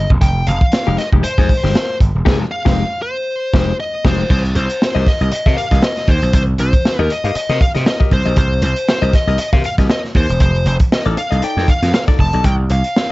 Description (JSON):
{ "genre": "funk", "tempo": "118 BPM", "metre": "4/4", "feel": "swing 56% on 16ths", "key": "C minor", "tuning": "A4 = 440 Hz", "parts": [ { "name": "high-gain lead guitar", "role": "melody", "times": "0.0-13.1 s", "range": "Ab4 to A5", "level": "-20 LUFS", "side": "left 1 dB", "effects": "distortion" }, { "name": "gritty slap bass", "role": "bass", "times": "0.0-12.8 s", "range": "E1 to C3", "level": "-16 LUFS", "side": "equal", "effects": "overdrive" }, { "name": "crunchy breakbeat drum kit", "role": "drums", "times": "0.1-13.1 s", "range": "crash cymbal, hi-hat, kick drum, snare drum", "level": "-15 LUFS", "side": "equal", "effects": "none" }, { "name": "semi-hollow electric guitar", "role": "accompaniment", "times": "0.9-12.4 s", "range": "Ab3 to F5", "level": "-23 LUFS", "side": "left 8 dB", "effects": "none" } ], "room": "small room ambience", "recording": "dark, warm production, nothing above 7.8 kHz", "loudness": "-13 LUFS", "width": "side -19 dB against mid", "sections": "0.0-4.3 A section; 4.3-13.1 B section", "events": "band accent 2.3-4.3", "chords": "0.0 Fm9; 4.3 Cm7; 10.4 F6; 12.4 N.C." }